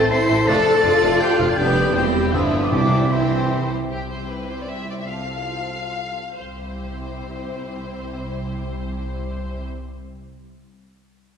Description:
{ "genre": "classical", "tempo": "126-164 BPM", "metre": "3/4", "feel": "rubato", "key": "C major", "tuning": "A4 = 439 Hz", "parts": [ { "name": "rich symphonic violin section", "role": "melody", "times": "0.0-9.7 s", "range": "G4 to F5", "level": "-31 LUFS", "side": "left 3 dB", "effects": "none" }, { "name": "silver concert flute", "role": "second line", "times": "0.0-3.7 s", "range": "C6 to C7", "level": "-25 LUFS", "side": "equal", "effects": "none" }, { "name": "warm oboe", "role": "second line", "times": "0.0-3.7 s", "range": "C5 to C6", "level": "-28 LUFS", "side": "right 2 dB", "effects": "none" }, { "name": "warm symphonic violin section", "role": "second line", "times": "0.0-9.7 s", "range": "A3 to C5", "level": "-31 LUFS", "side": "left 3 dB", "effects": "none" }, { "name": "warm symphonic viola section", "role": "accompaniment", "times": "0.0-9.6 s", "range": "C4 to C5", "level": "-28 LUFS", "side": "left 1 dB", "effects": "none" }, { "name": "mellow French horn section", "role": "sustained chords", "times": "0.0-3.7 s", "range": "C4 to C5", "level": "-24 LUFS", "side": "left 3 dB", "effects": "none" }, { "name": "rich symphonic cello section", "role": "bass", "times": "0.0-9.7 s", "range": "C2 to A4", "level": "-27 LUFS", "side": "right 1 dB", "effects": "none" }, { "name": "warm clarinet", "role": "second line", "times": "0.1-3.7 s", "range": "B3 to D4", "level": "-32 LUFS", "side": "left 1 dB", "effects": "none" }, { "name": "warm bassoon", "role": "accompaniment", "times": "0.1-3.7 s", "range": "E3 to G3", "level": "-30 LUFS", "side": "right 1 dB", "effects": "none" }, { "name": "rich symphonic double bass section", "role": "bass", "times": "0.3-4.3, 6.4-9.7 s", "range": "E1 to C2", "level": "-26 LUFS", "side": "right 2 dB", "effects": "none" }, { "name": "warm tuba", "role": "bass", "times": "0.3-3.7 s", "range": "E1 to C2", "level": "-29 LUFS", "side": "right 2 dB", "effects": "none" }, { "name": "mellow trombone section", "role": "sustained chords", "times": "0.5-3.7 s", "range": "E3 to D4", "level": "-32 LUFS", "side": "right 2 dB", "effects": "none" }, { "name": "timpani", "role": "percussion", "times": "2.7-3.3 s", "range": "C3", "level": "-25 LUFS", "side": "right 1 dB", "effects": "none" } ], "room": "wet scoring stage reverb, RT60 1.9 s", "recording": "heard from further back in the room, lossy compression artefacts", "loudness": "-19 LUFS", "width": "side -7 dB against mid", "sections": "0.0-3.9 A section; 3.9-6.4 B section; 6.4-8.9 C section", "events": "slowing down 3.3-6.4", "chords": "0.5 Dm/F; 1.6 G7/F; 2.0 C/E; 2.3 G9; 2.7 C; 5.1 F/C; 6.4 C", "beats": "0.11 | 0.48 0.84 1.21 | 1.58 1.95 2.33 | 2.72 3.12 3.51 | 3.90 4.30 4.70 | 5.10 5.51 5.93 | 6.39 6.80 7.22 | 7.64 8.06 8.48" }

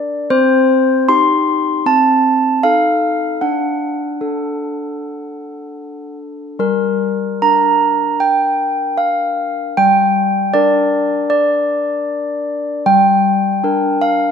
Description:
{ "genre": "classical, tune for handbells", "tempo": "77 BPM", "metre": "4/4", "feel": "straight", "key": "G minor", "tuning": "A4 = 441 Hz", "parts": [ { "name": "handbells", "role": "solo", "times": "0.0-14.3 s", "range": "G3 to C6", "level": "-13 LUFS", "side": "equal", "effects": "none" } ], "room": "moderate concert hall reverb, RT60 2.4 s", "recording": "none", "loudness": "-13 LUFS", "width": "side -7 dB against mid", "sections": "0.0-14.3 A section", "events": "none", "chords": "0.3 Cm; 1.9 Adim/C; 3.4 D; 6.6 Gm", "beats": "| 0.31 1.10 1.86 2.63 | 3.41 4.21 5.00 5.80 | 6.61 7.42 8.21 8.99 | 9.77 10.54 11.30 12.07 | 12.86 13.62" }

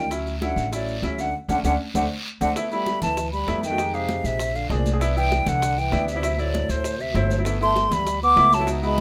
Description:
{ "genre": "Afro-Cuban jazz", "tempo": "196 BPM", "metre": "4/4", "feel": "straight", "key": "G major", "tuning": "A4 = 440 Hz", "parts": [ { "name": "hollow concert flute", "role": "melody", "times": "0.0-9.0 s", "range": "C5 to D6", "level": "-25 LUFS", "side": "equal", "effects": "none" }, { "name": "breathy trombone", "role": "second line", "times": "0.0-9.0 s", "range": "A2 to B3", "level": "-32 LUFS", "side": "equal", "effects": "none" }, { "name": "warm concert grand piano", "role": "accompaniment", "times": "0.0-9.0 s", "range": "F#3 to Ab4", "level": "-31 LUFS", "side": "equal", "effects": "none" }, { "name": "upright bass", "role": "bass", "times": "0.0-9.0 s", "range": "G1 to F2", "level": "-29 LUFS", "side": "equal", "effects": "none" }, { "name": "bongos", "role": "percussion", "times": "0.1-9.0 s", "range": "none", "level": "-37 LUFS", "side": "equal", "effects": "none" }, { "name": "congas", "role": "percussion", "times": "0.1-9.0 s", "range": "none", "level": "-35 LUFS", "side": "equal", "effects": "none" }, { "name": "guiro", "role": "percussion", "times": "0.1-9.0 s", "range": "none", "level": "-41 LUFS", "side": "equal", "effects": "none" }, { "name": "maracas", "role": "percussion", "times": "0.1-9.0 s", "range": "none", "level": "-42 LUFS", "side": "equal", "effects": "none" } ], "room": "moderate studio ambience, RT60 0.5 s", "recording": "none", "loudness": "-23 LUFS", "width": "mono", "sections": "0.0-2.6 A section; 2.6-9.0 B section", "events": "drum fill 1.3-2.6; band accent 1.3-2.6", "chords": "0.1 Dmaj9; 1.9 D7; 2.6 G69; 3.8 Fm7; 4.4 Bb9; 5.0 Cmaj9; 6.2 D9; 7.5 G69", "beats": "| 0.11 0.42 0.72 1.03 | 1.34 1.64 1.95 2.26 | 2.56 2.87 3.17 3.48 | 3.79 4.09 4.40 4.70 | 5.01 5.32 5.62 5.93 | 6.23 6.54 6.84 7.15 | 7.46 7.76 8.07 8.37 | 8.68 8.98" }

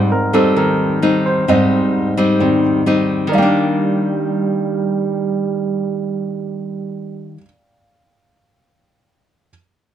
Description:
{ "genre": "bossa nova", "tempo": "131 BPM", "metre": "4/4", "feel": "straight", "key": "Eb major", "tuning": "A4 = 440 Hz", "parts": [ { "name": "nylon-string guitar", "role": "accompaniment", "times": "0.0-7.5 s", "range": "Ab2 to Eb4", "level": "-17 LUFS", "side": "left 2 dB", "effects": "none" }, { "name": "warm baby grand piano", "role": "accompaniment", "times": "0.0-9.5 s", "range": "Ab2 to G5", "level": "-18 LUFS", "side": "right 2 dB", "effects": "none" }, { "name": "breathy trombone", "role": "second line", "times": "3.3-7.4 s", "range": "G3", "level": "-21 LUFS", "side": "right 7 dB", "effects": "none" } ], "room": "light reverb", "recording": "close, detailed microphones", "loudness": "-14 LUFS", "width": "side -10 dB against mid", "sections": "0.0-3.3 A section; 3.3-7.0 B section", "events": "grand piano solo 0.0-3.3", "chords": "0.0 Abmaj7; 3.3 Ebmaj7", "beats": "0.10 0.56 1.01 | 1.47 1.93 2.39 2.85 | 3.31 3.77 4.23 4.69 | 5.15 5.61 6.07 6.53" }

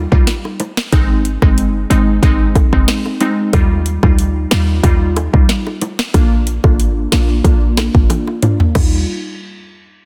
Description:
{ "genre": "dancehall", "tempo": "92 BPM", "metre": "4/4", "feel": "straight", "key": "Eb major", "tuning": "A4 = 440 Hz", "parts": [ { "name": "glassy wavetable pluck", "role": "accompaniment", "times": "0.0-9.0 s", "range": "G3 to F4", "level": "-21 LUFS", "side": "equal", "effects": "chorus, low-pass filter" }, { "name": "short 808-style bass", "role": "bass", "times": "0.0-9.1 s", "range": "F1 to Eb2", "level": "-17 LUFS", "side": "equal", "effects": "none" }, { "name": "afro-pop drum kit", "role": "drums", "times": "0.1-8.9 s", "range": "crash cymbal, hi-hat, kick drum, snare drum, toms", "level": "-16 LUFS", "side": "equal", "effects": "none" }, { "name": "bongos", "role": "percussion", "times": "0.5-9.1 s", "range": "none", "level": "-27 LUFS", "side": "equal", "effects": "none" } ], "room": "digital ambience", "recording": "dense, heavily limited modern master", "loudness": "-14 LUFS", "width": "mono", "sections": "0.0-8.8 A section; 8.8-10.1 B section", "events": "filter sweep on synth pluck 0.0-8.8; drum fill 8.1-8.8", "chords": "0.0 Ebadd9; 0.9 Ab; 3.5 Ebadd9; 6.1 Bb; 8.8 Ebadd9", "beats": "0.27 | 0.93 1.58 2.23 2.88 | 3.53 4.19 4.84 5.49 | 6.14 6.79 7.45 8.10 | 8.75" }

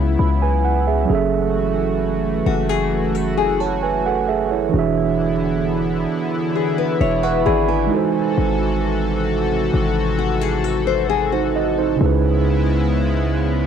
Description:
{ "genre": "R&B", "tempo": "66 BPM", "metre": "4/4", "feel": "straight", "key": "F# minor", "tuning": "A4 = 438 Hz", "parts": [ { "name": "mellow tine electric piano", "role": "accompaniment", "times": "0.0-13.7 s", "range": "C#3 to C#6", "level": "-20 LUFS", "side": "right 9 dB", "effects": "auto-pan, cassette tape" }, { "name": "chorused pulse-width pad", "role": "sustained chords", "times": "0.0-13.7 s", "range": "B#2 to A4", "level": "-23 LUFS", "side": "left 2 dB", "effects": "cassette tape" }, { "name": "warm 808-style bass", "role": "bass", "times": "0.0-13.7 s", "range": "E1 to C#2", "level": "-22 LUFS", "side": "left 2 dB", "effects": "none" }, { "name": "nylon-string guitar", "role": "arpeggios", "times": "2.5-12.0 s", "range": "E4 to C#5", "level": "-22 LUFS", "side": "left 14 dB", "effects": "cassette tape, tape echo" } ], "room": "light reverb", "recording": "home recording on cassette", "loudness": "-16 LUFS", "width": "side -8 dB against mid", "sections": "0.0-13.7 A section", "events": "tine electric piano fill 6.6-8.4", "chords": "0.0 C#m7; 1.1 F#m9; 4.7 E7; 7.9 G#7b9; 12.0 C#m7", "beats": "0.19 | 1.10 2.01 2.92 3.83 | 4.74 5.64 6.55 7.46 | 8.37 9.28 10.19 11.10 | 12.01 12.92" }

